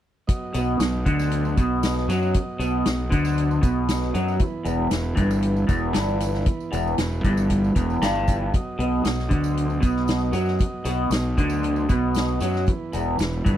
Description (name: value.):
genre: psychedelic rock.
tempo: 116 BPM.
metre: 4/4.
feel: straight.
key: unclear.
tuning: A4 = 441 Hz.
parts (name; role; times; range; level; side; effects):
overdriven combo organ; sustained chords; 0.3-13.6 s; E3 to D#5; -32 LUFS; right 3 dB; none.
soft-mallet drum kit; drums; 0.3-13.6 s; hi-hat, kick drum, snare drum; -25 LUFS; equal; none.
tambourine; percussion; 0.3-13.5 s; none; -44 LUFS; right 15 dB; none.
electric guitar through a small old amp; riff; 0.5-13.6 s; E2 to F#3; -24 LUFS; equal; phaser.
fuzz fingered electric bass; bass; 0.5-13.6 s; E1 to F#2; -26 LUFS; equal; overdrive.
room: little or no reverb.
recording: dry, close 1970s-style studio recording.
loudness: -20 LUFS.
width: side -11 dB against mid.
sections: 0.3-13.6 A section.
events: none.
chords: 0.3 B; 4.4 E5; 8.5 B; 12.7 E5.